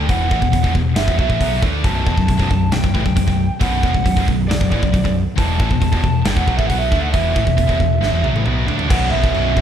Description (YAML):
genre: heavy metal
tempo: 136 BPM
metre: 4/4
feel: straight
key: B minor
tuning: A4 = 439 Hz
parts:
  - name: lead guitar through a small cranked amp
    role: melody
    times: 0.0-9.6 s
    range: D5 to A5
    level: -23 LUFS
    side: right 3 dB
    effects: overdrive, tape echo
  - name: heavy high-gain guitar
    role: riff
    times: 0.0-9.6 s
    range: B1 to D4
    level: -23 LUFS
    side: right 10 dB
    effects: distortion
  - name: scooped high-gain guitar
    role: riff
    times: 0.0-9.6 s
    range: B1 to D4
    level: -22 LUFS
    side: left 9 dB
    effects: distortion
  - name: overdriven picked electric bass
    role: bass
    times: 0.0-9.6 s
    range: B0 to D2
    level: -20 LUFS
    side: equal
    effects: none
  - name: big rock drum kit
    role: drums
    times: 0.1-9.6 s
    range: china cymbal, crash cymbal, hi-hat, kick drum, snare drum, toms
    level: -20 LUFS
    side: equal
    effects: none
  - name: distorted electric guitar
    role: riff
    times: 8.9-9.6 s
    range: B1 to B2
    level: -25 LUFS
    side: equal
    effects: overdrive
room: light reverb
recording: dark, warm production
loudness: -14 LUFS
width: side -9 dB against mid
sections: 0.0-8.9 A section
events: drum fill 8.0-8.9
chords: 0.0 E5; 1.8 B5; 5.4 E5; 8.9 B5